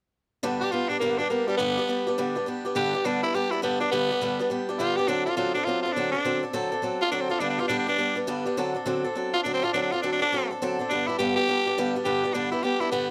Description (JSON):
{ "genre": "rock", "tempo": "207 BPM", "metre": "4/4", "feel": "swing 62% on 8ths", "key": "G major", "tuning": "A4 = 441 Hz", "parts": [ { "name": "picked swing-style acoustic guitar", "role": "accompaniment", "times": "0.4-13.1 s", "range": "G2 to A4", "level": "-29 LUFS", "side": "equal", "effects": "none" }, { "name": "growling tenor saxophone", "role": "melody", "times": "0.6-13.1 s", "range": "G3 to G4", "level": "-27 LUFS", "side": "equal", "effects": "none" } ], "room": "light reverb", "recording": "none", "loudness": "-26 LUFS", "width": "mono", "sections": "0.4-2.8 A section; 2.8-12.0 B section; 12.0-13.1 B section", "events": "none", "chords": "0.4 G; 5.1 D7; 7.4 G; 8.6 D7; 10.9 G" }